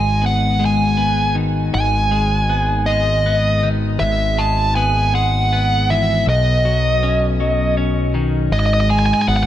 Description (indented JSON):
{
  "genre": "rock",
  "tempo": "53 BPM (dotted quarters)",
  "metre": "6/8",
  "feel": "straight",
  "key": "unclear",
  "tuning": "A4 = 441 Hz",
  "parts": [
    { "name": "dark smooth lead guitar", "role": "melody", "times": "0.0-9.5 s", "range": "D#5 to A5", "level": "-18 LUFS", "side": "right 1 dB", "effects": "overdrive, tape echo" },
    { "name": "twelve-string electric guitar", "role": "arpeggios", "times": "0.0-9.5 s", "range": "G#2 to C#4", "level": "-21 LUFS", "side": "left 3 dB", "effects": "phaser, tape echo" },
    { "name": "growling fingered electric bass", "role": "bass", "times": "0.0-9.5 s", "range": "G#1 to B1", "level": "-18 LUFS", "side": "right 1 dB", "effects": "overdrive" }
  ],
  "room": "light reverb",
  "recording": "dark, warm production",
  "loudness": "-14 LUFS",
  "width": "side -12 dB against mid",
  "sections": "0.0-8.5 A section",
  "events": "none",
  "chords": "0.0 G#m; 4.0 E/G#; 6.3 Badd9; 8.5 G#m"
}